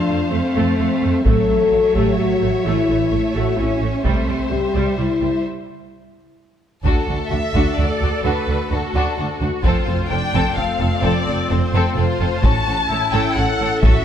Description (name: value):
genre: cinematic, epic orchestral film score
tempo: 129 BPM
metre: 3/4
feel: straight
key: D major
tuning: A4 = 441 Hz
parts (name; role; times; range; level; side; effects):
- warm studio violin section; melody; 0.0-14.0 s; A4 to A5; -25 LUFS; left 4 dB; none
- dark symphonic violin section; second line; 0.0-14.0 s; C4 to C#5; -26 LUFS; left 2 dB; none
- clear symphonic viola section; accompaniment; 0.0-14.0 s; G3 to A4; -26 LUFS; right 1 dB; none
- mellow French horn section; sustained chords; 0.0-14.0 s; A3 to A4; -22 LUFS; left 4 dB; none
- rich symphonic cello section; bass; 0.0-13.9 s; D2 to C#4; -25 LUFS; right 3 dB; none
- rich symphonic double bass section; bass; 0.1-13.9 s; F1 to F2; -22 LUFS; right 3 dB; none
- taiko ensemble; drums; 1.3-14.0 s; none; -19 LUFS; equal; none
room: moderate scoring stage reverb, RT60 1.9 s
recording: none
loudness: -16 LUFS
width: side -9 dB against mid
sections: 0.0-6.8 A section; 6.8-14.0 A section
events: break 5.4-6.8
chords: 0.0 F; 1.2 A; 4.0 C; 5.4 N.C.; 6.8 D; 9.6 F; 12.4 A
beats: 0.32 0.78 | 1.25 1.72 2.18 | 2.65 3.12 3.58 | 4.05 4.51 4.98 | 5.45 5.91 6.38 | 6.84 7.31 7.78 | 8.24 8.71 9.17 | 9.64 10.11 10.57 | 11.04 11.50 11.97 | 12.43 12.90 13.36 | 13.83